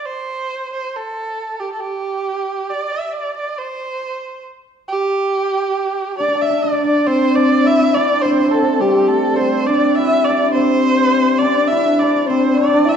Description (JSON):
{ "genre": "chinese traditional, Chinese chamber ensemble", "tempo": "69 BPM", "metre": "2/4", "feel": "rubato", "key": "unclear", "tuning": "A4 = 440 Hz", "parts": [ { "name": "warm erhu", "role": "melody", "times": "0.0-13.0 s", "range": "G4 to E5", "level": "-19 LUFS", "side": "right 2 dB", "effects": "none" }, { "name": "dark horsehead fiddle", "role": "second line", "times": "6.2-13.0 s", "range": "G3 to E4", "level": "-19 LUFS", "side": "left 5 dB", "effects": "none" }, { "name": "hammered dulcimer", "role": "second line", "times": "6.2-13.0 s", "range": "G3 to E4", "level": "-18 LUFS", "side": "right 5 dB", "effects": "none" }, { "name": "mellow hollow low xiao", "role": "second line", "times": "6.2-13.0 s", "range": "G4 to E5+22c", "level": "-20 LUFS", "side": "left 7 dB", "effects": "none" } ], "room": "wet recital hall reverb, RT60 1.5 s", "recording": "dark, warm production", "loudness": "-15 LUFS", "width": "side -7 dB against mid", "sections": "0.0-7.1 A section; 7.1-13.0 B section", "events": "none", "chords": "none" }